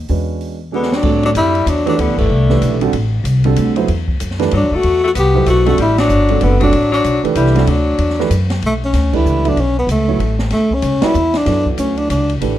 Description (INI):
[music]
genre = modal jazz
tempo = 190 BPM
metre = 3/4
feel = swing 62% on 8ths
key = A dorian, B minor from 8.6 s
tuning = A4 = 438 Hz
[part]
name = upright bass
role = bass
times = 0.0-12.6 s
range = F#1 to A2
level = -16 LUFS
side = equal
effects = none
[part]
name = warm grand piano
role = accompaniment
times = 0.1-12.6 s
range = B2 to E5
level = -19 LUFS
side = right 7 dB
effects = none
[part]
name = open jazz drum kit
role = drums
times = 0.1-12.5 s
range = crash cymbal, hi-hat, kick drum, ride cymbal, snare drum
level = -24 LUFS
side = equal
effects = none
[part]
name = edgy tenor saxophone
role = second line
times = 0.7-8.3 s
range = D3 to B3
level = -22 LUFS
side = left 7 dB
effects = none
[part]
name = warm tenor saxophone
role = melody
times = 0.8-12.3 s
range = A3 to G4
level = -16 LUFS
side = left 1 dB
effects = plate reverb
[sound]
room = light reverb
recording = dark, warm production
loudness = -12 LUFS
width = side -12 dB against mid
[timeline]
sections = 0.0-1.0 A section; 1.0-8.6 B section; 8.6-12.6 C section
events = drum fill 0.7-1.0; band accent 2.1, 5.9, 9.1, 11.0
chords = 0.1 E13; 1.0 A13sus4; 8.6 Bm9